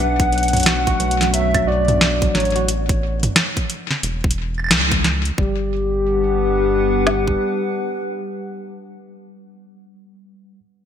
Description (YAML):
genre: IDM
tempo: 89 BPM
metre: 4/4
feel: swing 62% on 16ths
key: G lydian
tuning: A4 = 439 Hz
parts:
  - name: warbly nostalgic lead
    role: melody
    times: 0.0-8.8 s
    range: G4 to F#5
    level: -21 LUFS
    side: left 2 dB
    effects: chorus, ping-pong delay
  - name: warbly tape-like pad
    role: sustained chords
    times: 0.0-8.8 s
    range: G3 to F#5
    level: -26 LUFS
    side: left 1 dB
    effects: chorus, built-in reverb
  - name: tine electric piano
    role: arpeggios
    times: 0.0-10.6 s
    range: F#2 to F#4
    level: -28 LUFS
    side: right 2 dB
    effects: overdrive, fast stereo tremolo, ping-pong delay
  - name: rubbery square bass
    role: bass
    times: 0.0-7.4 s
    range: E1 to C#2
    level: -22 LUFS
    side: equal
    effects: tube saturation
  - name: electro analog drum machine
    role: drums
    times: 0.2-5.4 s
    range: hi-hat, snare drum, toms, woodblock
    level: -19 LUFS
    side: equal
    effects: ping-pong delay
  - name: organic electronic drum kit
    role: drums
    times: 0.2-7.4 s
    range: kick drum, snare drum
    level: -20 LUFS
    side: equal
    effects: none
room: moderate lush hall reverb, RT60 1.7 s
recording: bright 1980s-style digital production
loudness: -16 LUFS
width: side -9 dB against mid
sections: 0.0-5.4 A section; 5.4-8.1 B section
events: band accent 4.7-5.0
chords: 0.0 Bm7; 2.7 A; 5.4 Gmaj7